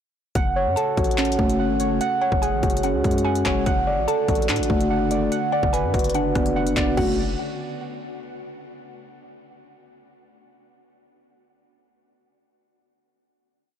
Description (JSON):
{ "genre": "hip hop, drill", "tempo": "145 BPM", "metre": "4/4", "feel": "half-time", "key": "F# minor", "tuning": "A4 = 440 Hz", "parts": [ { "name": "glassy FM pad", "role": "sustained chords", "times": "0.6-7.2 s", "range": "C#3 to F#4", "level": "-33 LUFS", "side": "equal", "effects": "ensemble chorus, built-in reverb" }, { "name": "muted felt-like synth keys", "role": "arpeggios", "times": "0.4-7.2 s", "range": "G#3 to F#5", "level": "-22 LUFS", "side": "right 1 dB", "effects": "chorus, ping-pong delay" }, { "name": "hard-hitting 808-style bass", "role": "bass", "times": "0.4-7.4 s", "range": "E#1 to A2", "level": "-28 LUFS", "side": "left 1 dB", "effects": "none" }, { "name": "drill drum kit", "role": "drums", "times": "0.4-7.1 s", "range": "crash cymbal, handclaps, hi-hat, kick drum, rim click, toms", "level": "-26 LUFS", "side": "left 1 dB", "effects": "none" }, { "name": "mallet-like synth pluck", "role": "second line", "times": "0.8-7.2 s", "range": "F#5 to A5", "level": "-32 LUFS", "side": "left 1 dB", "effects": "chorus, phaser, ping-pong delay" } ], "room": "light reverb, digital ambience", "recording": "blown-out, overdriven recording, overdrive", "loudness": "-19 LUFS", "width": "side -9 dB against mid", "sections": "0.4-7.0 hook; 7.0-8.6 final chord", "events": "none", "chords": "0.4 F#m; 3.7 D/F#; 5.3 Bm/F#; 7.0 F#m", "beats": "| 0.35 0.77 1.18 1.59 | 2.01 2.42 2.84 3.25 | 3.66 4.08 4.49 4.91 | 5.32 5.73 6.15 6.56 | 6.97" }